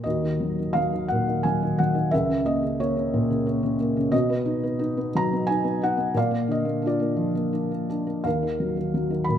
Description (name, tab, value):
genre	classical, lyrical solo piano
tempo	88 BPM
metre	3/4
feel	rubato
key	unclear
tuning	A4 = 440 Hz
part	felt-muted upright piano	solo	0.0-9.4 s	Db2 to Cb6	-22 LUFS	equal	none
room	moderate recital hall reverb, RT60 1.5 s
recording	none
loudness	-22 LUFS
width	side -9 dB against mid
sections	0.1-9.4 A section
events	none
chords	0.1 Ebm; 2.1 Dbm69; 4.1 B; 6.1 Bb; 8.3 Ebmadd9